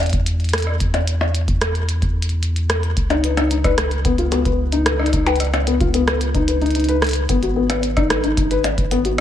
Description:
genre	IDM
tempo	111 BPM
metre	4/4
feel	straight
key	unclear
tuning	A4 = 441 Hz
part	warm sub bass	bass	0.0-9.2 s	G#1 to E2	-21 LUFS	equal	none
part	glitchy drum kit	drums	0.0-9.2 s	hi-hat, percussion blips, rim click	-22 LUFS	equal	digital delay
part	electronic kick drum	drums	0.1-8.9 s	none	-22 LUFS	equal	none
part	felt-muted upright piano	arpeggios	3.1-9.2 s	B3 to B4	-19 LUFS	left 4 dB	digital delay
room	light reverb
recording	lossy compression artefacts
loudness	-16 LUFS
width	side -10 dB against mid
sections	0.0-9.2 A section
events	none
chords	0.0 N.C.; 3.0 C#7(no3); 7.3 G#m

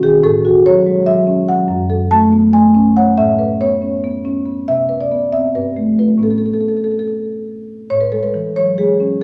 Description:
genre	classical, contemporary piece for solo marimba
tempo	246-294 BPM (eighths)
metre	7/8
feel	rubato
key	A major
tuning	A4 = 437 Hz
part	marimba with soft mallets	solo	0.0-9.2 s	F#2 to A5	-14 LUFS	equal	none
room	wet recital hall reverb, RT60 1.4 s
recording	none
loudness	-14 LUFS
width	mono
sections	0.0-7.9 A section; 7.9-9.2 A section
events	none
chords	0.2 A6; 1.7 F#m; 3.2 Aadd9; 4.7 Cmaj9; 5.5 G9; 6.2 Aadd9; 7.9 Amaj7

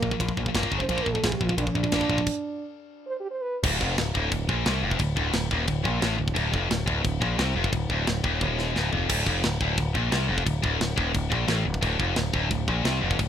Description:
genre	heavy metal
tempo	176 BPM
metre	4/4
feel	straight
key	D minor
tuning	A4 = 440 Hz
part	mellow French horn	melody	0.0-3.6 s	Bb3 to C5	-30 LUFS	right 3 dB	ping-pong delay
part	tight distorted guitar	riff	0.0-13.3 s	D2 to Bb3	-27 LUFS	left 2 dB	distortion
part	growling picked electric bass	bass	0.0-13.3 s	D1 to C2	-28 LUFS	equal	overdrive
part	tight metal drum kit	drums	0.0-13.3 s	china cymbal, crash cymbal, kick drum, ride cymbal, snare drum, toms	-28 LUFS	equal	none
room	little or no reverb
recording	rough home demo mix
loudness	-23 LUFS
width	side -9 dB against mid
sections	0.0-3.6 A section; 3.6-9.1 B section; 9.1-13.3 B section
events	French horn solo 0.0-3.6; stop 2.3-3.6; drum fill 8.4-9.1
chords	0.0 Bb5; 0.7 F#5; 0.9 Bb; 3.3 N.C.; 3.6 Dm

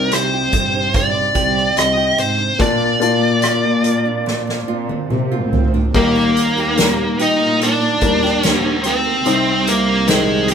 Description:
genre	pop ballad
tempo	73 BPM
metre	4/4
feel	straight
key	Eb major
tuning	A4 = 441 Hz
part	dark smooth lead guitar	melody	0.0-10.5 s	Ab3 to Eb5	-17 LUFS	right 1 dB	overdrive
part	felt-muted upright piano	accompaniment	0.0-10.5 s	Bb2 to D5	-22 LUFS	left 6 dB	none
part	nylon-string guitar	arpeggios	0.0-10.5 s	Bb2 to G4	-25 LUFS	right 6 dB	ping-pong delay
part	dark studio cello section	bass	0.0-10.5 s	C2 to C3	-21 LUFS	equal	none
part	soft-mallet drum kit	drums	0.1-10.5 s	crash cymbal, hi-hat, kick drum, rim click, snare drum, toms	-20 LUFS	equal	none
part	tambourine	percussion	5.9-10.5 s	none	-33 LUFS	right 7 dB	none
room	moderate studio reverb, RT60 0.8 s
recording	band playing live in one room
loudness	-14 LUFS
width	side -7 dB against mid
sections	0.0-5.9 A section; 5.9-10.5 B section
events	drum fill 4.3-5.9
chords	0.0 Cmadd9; 2.6 Bb; 5.9 Eb; 9.3 Cm

